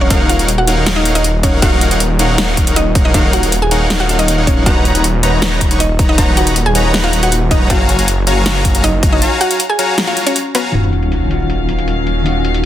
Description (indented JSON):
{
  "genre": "future bass",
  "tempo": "158 BPM",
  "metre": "4/4",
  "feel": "half-time",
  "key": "Eb minor",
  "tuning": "A4 = 440 Hz",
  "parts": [
    { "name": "mallet-like synth pluck", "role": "melody", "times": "0.0-10.7 s", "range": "Cb4 to Ab5", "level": "-19 LUFS", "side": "right 1 dB", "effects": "chorus, sidechain pumping, digital delay" },
    { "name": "big bright polysynth", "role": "riff", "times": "0.0-10.7 s", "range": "Eb4 to C#6", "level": "-17 LUFS", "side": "left 1 dB", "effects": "cassette tape, sidechain pumping" },
    { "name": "wide detuned saw bass", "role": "bass", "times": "0.0-12.7 s", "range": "Eb1 to Gb1", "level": "-16 LUFS", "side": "equal", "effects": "chorus, sidechain pumping" },
    { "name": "big-room dance drum kit", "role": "drums", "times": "0.1-12.6 s", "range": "hi-hat, snare drum", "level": "-18 LUFS", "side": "equal", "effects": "low-pass filter on hats, low-pass filter on snare, low-pass filter on cymbals, low-pass filter on room" },
    { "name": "electronic kick drum", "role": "drums", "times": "0.1-9.1 s", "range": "none", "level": "-14 LUFS", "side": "equal", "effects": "none" },
    { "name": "mellow electric guitar", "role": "accompaniment", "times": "10.7-12.7 s", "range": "Eb3 to Gb4", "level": "-18 LUFS", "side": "left 3 dB", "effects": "harmonic tremolo, sidechain pumping" },
    { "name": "dark studio string section", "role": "sustained chords", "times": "10.7-12.7 s", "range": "Eb3 to F5", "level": "-23 LUFS", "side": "left 2 dB", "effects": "sidechain pumping" },
    { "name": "sub drop", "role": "sound effects", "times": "10.7-12.3 s", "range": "none", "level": "-20 LUFS", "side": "equal", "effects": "none" }
  ],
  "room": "digital ambience",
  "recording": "dense, heavily limited modern master",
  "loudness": "-11 LUFS",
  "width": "side -12 dB against mid",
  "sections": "0.0-10.7 A section; 10.7-12.7 B section",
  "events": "drop 0.0-10.7; impact 10.7-12.3",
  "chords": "0.0 Ebm9; 4.7 Bmaj9/D#; 7.7 Gbmaj9; 10.7 Ebm9"
}